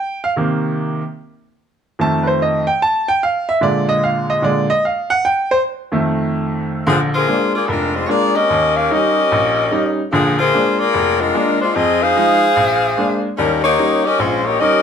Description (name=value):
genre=jazz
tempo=148 BPM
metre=4/4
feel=swing 66% on 8ths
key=Bb major from 6.9 s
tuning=A4 = 438 Hz
part: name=bright upright piano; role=accompaniment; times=0.0-14.8 s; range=F1 to A5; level=-17 LUFS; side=right 1 dB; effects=none
part: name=bright saxophone section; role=melody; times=6.9-14.8 s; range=F3 to F5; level=-14 LUFS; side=left 2 dB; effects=none
room=moderate large studio reverb, RT60 0.9 s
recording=none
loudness=-14 LUFS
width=side -7 dB against mid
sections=0.0-6.9 A section; 6.9-14.8 B section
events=upright piano solo 0.0-6.9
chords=0.4 Cm7; 2.0 F7; 3.6 Bb7; 5.2 F7; 6.9 Bb7; 8.5 Eb7; 10.1 Bb7; 11.7 Fm7; 12.6 Bb7; 13.4 Eb7